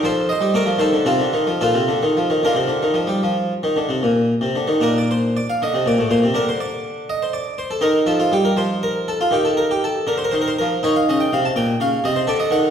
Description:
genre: classical, baroque-style suite movement for harpsichord.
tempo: 73-82 BPM (dotted quarters).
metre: 12/8.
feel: rubato.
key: Bb major.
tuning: A4 = 440 Hz.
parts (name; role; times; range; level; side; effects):
harpsichord; solo; 0.0-12.7 s; A2 to A5; -16 LUFS; equal; none.
room: wet recital hall reverb, RT60 1.4 s.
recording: heard from further back in the room.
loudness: -16 LUFS.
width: side -8 dB against mid.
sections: 0.0-4.8 A section; 4.8-12.7 A section.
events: none.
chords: 0.0 F7; 1.6 Bb; 4.8 Cm13; 6.3 N.C.; 7.8 Eb; 10.8 Eb5.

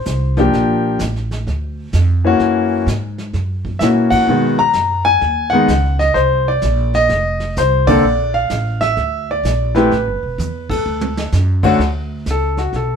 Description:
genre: jazz piano trio.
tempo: 128 BPM.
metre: 4/4.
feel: swing 66% on 8ths.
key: unclear.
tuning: A4 = 439 Hz.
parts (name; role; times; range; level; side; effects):
clear grand piano; melody; 0.0-13.0 s; D3 to Bb5; -15 LUFS; left 2 dB; none.
upright bass; bass; 0.0-13.0 s; E1 to B2; -18 LUFS; right 1 dB; none.
vintage brush drum kit; drums; 0.1-13.0 s; brushed snare drum, crash cymbal, hi-hat, kick drum, snare drum, toms; -26 LUFS; right 2 dB; none.
room: moderate studio reverb, RT60 0.7 s.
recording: band playing live in one room.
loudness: -14 LUFS.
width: side -7 dB against mid.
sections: 0.0-11.8 A section; 11.8-13.0 B section.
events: band accent 4.1, 7.8, 10.6; drum fill 10.4-11.3; grand piano solo 11.8-13.0.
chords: 0.0 F5; 0.5 Bb6; 2.4 F#7; 4.3 B6; 6.2 Bbadd9; 7.1 F7(no3); 8.0 Bbmaj7; 9.9 A5; 10.9 D; 11.8 Dmaj7(no3).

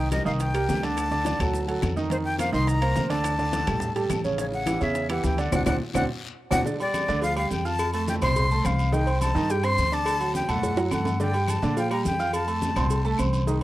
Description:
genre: latin, salsa.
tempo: 211 BPM.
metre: 4/4.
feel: straight.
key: G minor.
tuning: A4 = 440 Hz.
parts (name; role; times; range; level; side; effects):
breathy bright jazz flute; melody; 0.0-13.2 s; C5 to C6; -28 LUFS; left 2 dB; none.
clear baby grand piano; accompaniment; 0.0-13.6 s; C#3 to F6; -28 LUFS; right 4 dB; none.
upright bass; bass; 0.0-13.6 s; A1 to Bb2; -27 LUFS; left 1 dB; none.
bongos and cowbell; percussion; 0.1-13.6 s; none; -36 LUFS; left 4 dB; none.
claves; percussion; 0.1-13.3 s; none; -41 LUFS; left 9 dB; none.
congas; percussion; 0.1-13.6 s; none; -34 LUFS; left 1 dB; none.
guiro; percussion; 0.1-13.6 s; none; -43 LUFS; left 6 dB; none.
maracas; percussion; 0.1-13.6 s; none; -42 LUFS; right 7 dB; none.
timbales and agogo bells; percussion; 0.1-13.5 s; none; -33 LUFS; right 3 dB; none.
room: small room ambience.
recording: dry, close 1970s-style studio recording.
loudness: -22 LUFS.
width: side -15 dB against mid.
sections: 0.0-6.7 A section; 6.7-13.6 B section.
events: drum fill 5.5-6.7, 10.6-11.2; band accent 5.5-6.7.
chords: 0.0 Cm7; 1.0 D; 2.1 F7sus4; 3.2 Dsus4; 4.4 A7; 5.5 D7; 6.7 G5; 7.8 F; 8.9 Cm; 10.1 D; 11.2 Gm7; 12.3 F.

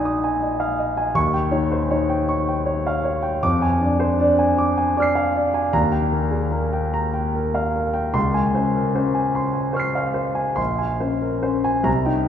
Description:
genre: classical, impressionist solo piano.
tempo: 46-55 BPM (dotted quarters).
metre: 6/8.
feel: rubato.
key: unclear.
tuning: A4 = 437 Hz.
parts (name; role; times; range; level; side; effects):
warm concert grand piano; solo; 0.0-12.3 s; Bb1 to C7; -18 LUFS; equal; none.
room: wet church reverb, RT60 3.9 s.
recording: recorded in a church or concert hall.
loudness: -18 LUFS.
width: side -9 dB against mid.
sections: 0.0-12.3 A section.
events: none.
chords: 0.0 Fm7/Bb; 1.2 Eb9; 3.4 Fm6; 5.7 Ebadd9; 8.2 Dbmaj7; 10.6 Bbm9.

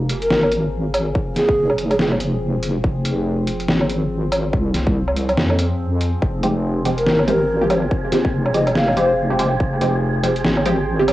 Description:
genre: deep dubstep.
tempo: 142 BPM.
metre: 4/4.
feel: swing 59% on 16ths, half-time.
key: F minor.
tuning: A4 = 441 Hz.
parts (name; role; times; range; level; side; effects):
overtone-sweeping drone; sustained chords; 0.0-11.1 s; F3 to C5; -28 LUFS; left 1 dB; chorus, built-in reverb, cassette tape.
deep soft wobble bass; bass; 0.0-11.1 s; F1 to F2; -21 LUFS; equal; chorus, tube saturation.
trip hop sampler-style drum kit; drums; 0.1-11.1 s; hi-hat, snare drum, woodblock; -21 LUFS; equal; overdrive, cassette tape.
breathy mellow low ney; melody; 0.2-2.1, 7.0-9.2 s; Ab4 to F5; -21 LUFS; equal; cassette tape, dub echo.
electronic kick drum; drums; 1.2-9.7 s; none; -22 LUFS; equal; overdrive, cassette tape.
wind-like tuned noise texture; texture; 6.9-11.1 s; Ab4; -29 LUFS; right 4 dB; built-in reverb, cassette tape.
filtered dub chord stab; stabs; 6.4-11.1 s; F3 to G4; -20 LUFS; equal; phaser, lush chorus, cassette tape, dub echo.
room: light reverb, digital ambience.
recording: home recording on cassette.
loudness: -16 LUFS.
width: side -15 dB against mid.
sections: 0.0-11.1 A section.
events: none.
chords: 0.0 Fmadd9.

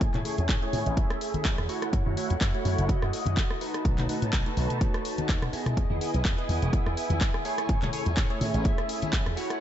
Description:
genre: filtered disco house.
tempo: 125 BPM.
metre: 4/4.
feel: swing 55% on 16ths.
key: unclear.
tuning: A4 = 440 Hz.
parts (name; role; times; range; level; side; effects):
funky polysynth comp; accompaniment; 0.0-9.6 s; A3 to E5; -32 LUFS; right 1 dB; chorus, phaser, sidechain pumping, low-pass filter, dub echo.
warm studio violin section; sustained chords; 0.0-9.6 s; A3 to D#6; -37 LUFS; right 1 dB; sidechain pumping, low-pass filter.
slap bass with an envelope filter; bass; 0.0-9.3 s; E1 to B2; -29 LUFS; equal; tube saturation, sidechain pumping, low-pass filter.
electronic kick drum; drums; 0.0-9.2 s; none; -27 LUFS; equal; none.
house drum kit; drums; 0.0-9.6 s; handclaps, hi-hat, rim click; -35 LUFS; equal; sidechain pumping on hats.
tambourine and congas; percussion; 0.0-9.6 s; none; -38 LUFS; left 5 dB; none.
room: light reverb, digital ambience.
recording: echo-heavy mix, nothing above 7.9 kHz.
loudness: -25 LUFS.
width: side -11 dB against mid.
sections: 0.0-9.6 A section.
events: filter sweep 0.0-9.6.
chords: 0.0 Amaj7; 1.7 F#m7; 3.6 B7; 5.8 Emaj7; 7.7 Amaj7.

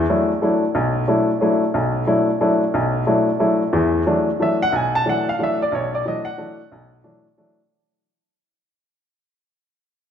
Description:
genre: jazz.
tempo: 181 BPM.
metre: 3/4.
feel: swing 64% on 8ths.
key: unclear.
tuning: A4 = 440 Hz.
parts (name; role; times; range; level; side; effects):
warm upright piano; solo; 0.0-7.6 s; B1 to A5; -17 LUFS; left 1 dB; none.
room: wet recital hall reverb, RT60 1.6 s.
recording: recorded in a church or concert hall.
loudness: -17 LUFS.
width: side -8 dB against mid.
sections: 0.0-3.7 A section; 3.7-7.7 B section.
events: fade-out 3.7-7.7.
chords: 0.0 E9sus4.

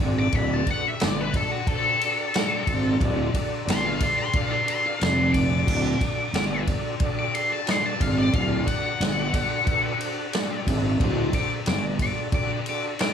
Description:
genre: blues rock power trio and southern rock.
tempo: 90 BPM.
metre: 4/4.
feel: straight.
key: D mixolydian.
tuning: A4 = 440 Hz.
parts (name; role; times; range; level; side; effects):
overdriven tonewheel organ; sustained chords; 0.0-13.1 s; D4 to E5; -31 LUFS; right 3 dB; slow rotary speaker, chorus vibrato.
fuzz fingered electric bass; bass; 0.0-12.0 s; D1 to G#1; -24 LUFS; equal; overdrive.
octave-fuzz lead guitar; melody; 0.2-13.1 s; F#4 to D6; -27 LUFS; left 3 dB; wah, distortion.
vintage drum kit; drums; 0.3-13.1 s; crash cymbal, kick drum, ride cymbal, snare drum; -26 LUFS; equal; none.
room: light reverb.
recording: small room ambience.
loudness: -21 LUFS.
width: side -8 dB against mid.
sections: 0.0-13.1 A section.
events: lead electric guitar solo 0.0-13.1.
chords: 0.0 D.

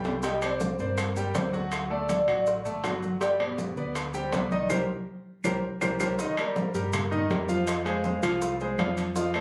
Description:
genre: latin, salsa.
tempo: 161 BPM.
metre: 4/4.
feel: straight.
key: unclear.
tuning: A4 = 440 Hz.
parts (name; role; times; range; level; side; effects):
bright grand piano; accompaniment; 0.0-9.4 s; B2 to G5; -32 LUFS; equal; none.
deep dub fingered electric bass; bass; 0.0-9.4 s; G1 to G2; -37 LUFS; equal; none.
bongos; percussion; 0.0-9.4 s; none; -41 LUFS; equal; none.
maracas; percussion; 0.0-9.4 s; none; -47 LUFS; equal; none.
timbales; percussion; 0.1-9.4 s; none; -38 LUFS; equal; none.
mellow alto ocarina; melody; 0.2-9.4 s; A4 to F5; -34 LUFS; equal; none.
congas; percussion; 0.2-9.4 s; none; -36 LUFS; equal; none.
claves; percussion; 0.4-9.4 s; none; -37 LUFS; equal; none.
room: wet large studio reverb, RT60 0.9 s.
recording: recorded on a phone in the room, club reverb.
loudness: -28 LUFS.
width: mono.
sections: 0.0-6.2 A section; 6.2-9.4 A section.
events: drum fill 0.0, 4.7-6.2; band accent 4.7-6.2.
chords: 0.2 Csus2; 1.7 D; 3.2 G; 4.7 C5; 6.2 F9sus4; 7.7 Fm.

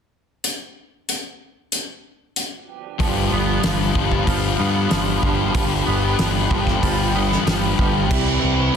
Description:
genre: rock, shoegaze and dream pop.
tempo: 94 BPM.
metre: 4/4.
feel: straight.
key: unclear.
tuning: A4 = 440 Hz.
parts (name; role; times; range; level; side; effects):
loose indie drum kit; drums; 0.4-8.3 s; crash cymbal, hi-hat, kick drum, snare drum; -23 LUFS; equal; none.
airy breathy pad; sustained chords; 3.3-8.8 s; E4 to B5; -27 LUFS; right 1 dB; chorus, plate reverb.
twangy electric guitar; arpeggios; 3.0-8.7 s; E3 to B3; -27 LUFS; right 9 dB; ensemble chorus, slapback echo.
electric guitar through a small old amp; riff; 3.0-8.8 s; G2 to G4; -30 LUFS; right 13 dB; reverse reverb.
thick fuzz guitar; riff; 3.0-8.8 s; G2 to C4; -22 LUFS; left 12 dB; distortion, analog chorus.
fuzz picked electric bass; bass; 3.0-8.7 s; G1 to G2; -23 LUFS; right 1 dB; overdrive.
room: light reverb.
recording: dense, heavily limited modern master.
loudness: -18 LUFS.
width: side -7 dB against mid.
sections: 0.4-3.0 A section; 3.0-8.8 B section.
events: none.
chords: 0.4 N.C.; 3.0 G7; 8.1 Cmaj7.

